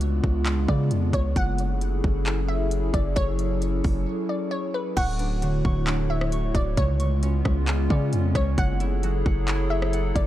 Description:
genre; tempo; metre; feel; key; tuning
hip hop, atmospheric cloud-rap; 133 BPM; 4/4; half-time; F# minor; A4 = 439 Hz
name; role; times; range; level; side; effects
glassy wavetable pluck; melody; 0.0-10.3 s; B4 to F#5; -32 LUFS; equal; chorus, digital delay
warbly tape-like pad; sustained chords; 0.0-10.3 s; C#3 to C#5; -29 LUFS; left 1 dB; chorus, built-in reverb, sidechain pumping
long sustained 808-style bass; bass; 0.0-10.3 s; D1 to C#3; -24 LUFS; equal; none
trap drum kit; drums; 0.0-10.3 s; crash cymbal, handclaps, hi-hat, kick drum, rim click; -26 LUFS; equal; vintage 12-bit sampler grit
concert harp; arpeggios; 5.0-10.3 s; C#3 to C#6; -32 LUFS; right 2 dB; digital delay
room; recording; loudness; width
digital ambience; none; -22 LUFS; side -13 dB against mid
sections
0.0-5.0 A section; 5.0-10.3 B section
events
break 4.1-5.0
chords
0.0 C#7b9; 1.4 F#m9; 5.0 Dmaj7; 6.8 C#7b9; 8.6 F#m9

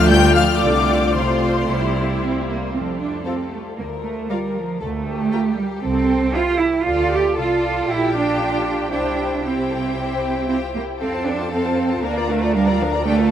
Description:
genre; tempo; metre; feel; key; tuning
quick classical-period movement for string orchestra; 116 BPM; 4/4; straight; F major; A4 = 442 Hz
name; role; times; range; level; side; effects
warm studio violin section; melody; 0.0-13.3 s; E4 to G6; -26 LUFS; left 6 dB; none
rich studio violin section; second line; 0.0-13.3 s; G4 to Bb5; -26 LUFS; left 3 dB; none
rich studio viola section; accompaniment; 0.0-13.3 s; G3 to D5; -24 LUFS; left 1 dB; none
bright studio double bass section; bass; 0.0-13.3 s; Bb1 to F2; -26 LUFS; right 2 dB; none
rich studio cello section; bass; 0.0-13.3 s; C3 to G4; -21 LUFS; right 4 dB; none
room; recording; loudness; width
wet huge ambient reverb, RT60 7.8 s; in a vast, echoing space; -17 LUFS; side -10 dB against mid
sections
0.0-2.7 A section; 2.7-13.3 B section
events
none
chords
0.0 Dm; 0.6 F/C; 1.7 C; 2.7 F; 3.8 Gm7/D; 5.8 C; 6.9 Dm; 7.9 Gm7/Bb; 8.9 C; 11.0 F; 12.0 Gm7/D

